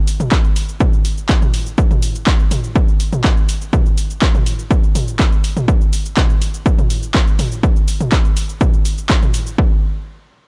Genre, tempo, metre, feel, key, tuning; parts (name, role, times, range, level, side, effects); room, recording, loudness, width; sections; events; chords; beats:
techno; 123 BPM; 4/4; straight
punchy analog drum machine; drums; 0.1-9.6 s; handclaps, hi-hat, shaker, toms; -24 LUFS; equal; overdrive, sidechain pumping on perc, sidechain pumping on hats, sidechain pumping on toms
electronic kick drum; drums; 0.3-9.7 s; -16 LUFS; equal; overdrive
little or no reverb; dry, gritty hardware recording; -16 LUFS; mono
0.0-9.6 A section
drop 0.0-9.6
0.32 0.80 1.29 | 1.78 2.27 2.75 3.24 | 3.73 4.22 4.71 5.19 | 5.68 6.17 6.66 7.15 | 7.63 8.12 8.61 9.10 | 9.59